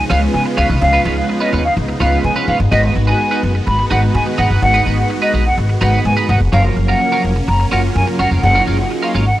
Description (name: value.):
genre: pop.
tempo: 126 BPM.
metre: 4/4.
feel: straight.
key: F# major.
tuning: A4 = 440 Hz.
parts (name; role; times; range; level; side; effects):
hollow concert flute; melody; 0.0-9.4 s; D#5 to B5; -18 LUFS; equal; none.
supersaw chords; sustained chords; 0.0-9.4 s; C#3 to F#4; -25 LUFS; right 1 dB; none.
big bright polysynth; accompaniment; 0.1-9.2 s; E#3 to B4; -21 LUFS; right 1 dB; chorus.
twelve-string electric guitar; riff; 0.1-9.3 s; C#4 to B4; -22 LUFS; right 3 dB; analog chorus.
upright bass; bass; 0.1-9.3 s; E#1 to C#3; -15 LUFS; equal; none.
room: light reverb.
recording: dry, gritty hardware recording, transformer saturation.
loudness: -12 LUFS.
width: side -14 dB against mid.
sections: 0.0-9.4 A section.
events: none.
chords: 0.0 C#7; 2.7 G#m7; 6.5 F#maj7.